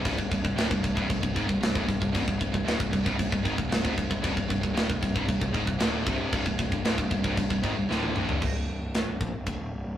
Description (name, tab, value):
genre	heavy metal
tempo	115 BPM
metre	4/4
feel	straight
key	C minor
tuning	A4 = 441 Hz
part	cranked stack guitar	riff	0.0-8.4 s	C2 to Eb3	-34 LUFS	equal	overdrive
part	distorted electric guitar	riff	0.0-8.4 s	C2 to Eb3	-33 LUFS	left 3 dB	overdrive
part	heavy high-gain guitar	riff	0.0-8.4 s	C2 to Eb3	-34 LUFS	right 5 dB	distortion
part	fuzz picked electric bass	bass	0.0-10.0 s	C1 to Bb1	-34 LUFS	equal	overdrive
part	tight metal drum kit	drums	0.1-9.6 s	crash cymbal, kick drum, ride cymbal, snare drum, toms	-28 LUFS	equal	none
room	light reverb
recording	rough rehearsal-room recording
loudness	-25 LUFS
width	side -11 dB against mid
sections	0.0-8.4 A section; 8.4-10.0 B section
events	drum fill 7.9-8.4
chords	0.0 Cm; 8.4 N.C.